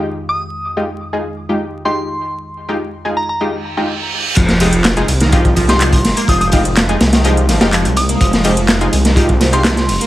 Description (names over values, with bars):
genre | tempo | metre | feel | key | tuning
breakbeat, breaks | 125 BPM | 4/4 | straight | F minor | A4 = 440 Hz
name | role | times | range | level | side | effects
warbly tape-like pad | sustained chords | 0.0-10.1 s | F2 to G4 | -25 LUFS | right 3 dB | chorus, built-in reverb, sidechain pumping
orchestra-hit-like synth stab | stabs | 0.0-10.1 s | Ab3 to Ab4 | -20 LUFS | left 1 dB | built-in reverb, cassette tape, tape echo
glassy synth bell | melody | 0.3-10.0 s | Bb5 to Eb6 | -21 LUFS | equal | chorus, tremolo, old record sound, tape echo
reverse cymbal and sub drop | sound effects | 3.6-6.3 s | none | -23 LUFS | right 2 dB | none
overdriven synth lead | riff | 4.4-10.1 s | Eb3 to Bb3 | -19 LUFS | equal | distortion, phaser, tube saturation, analog chorus, tape echo
detuned saw bass | bass | 4.4-10.0 s | F1 to C2 | -16 LUFS | equal | none
crunchy breakbeat drum kit | drums | 4.4-10.0 s | crash cymbal, hi-hat, kick drum, snare drum | -14 LUFS | equal | none
house drum kit | drums | 4.4-10.1 s | handclaps, hi-hat, ride cymbal | -21 LUFS | right 1 dB | none
room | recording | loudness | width
light reverb | vinyl crackle, faint mains hum | -12 LUFS | side -15 dB against mid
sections
0.0-4.4 A section; 4.4-10.1 B section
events
filter sweep on synth stab 0.0-4.4; reverse cymbal 3.6-4.4; drop 4.4-10.1; impact 4.4-6.3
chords
0.0 Fm9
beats
0.05 | 0.53 1.01 1.49 1.97 | 2.45 2.93 3.41 3.89 | 4.37 4.85 5.33 5.81 | 6.29 6.77 7.25 7.73 | 8.21 8.69 9.17 9.65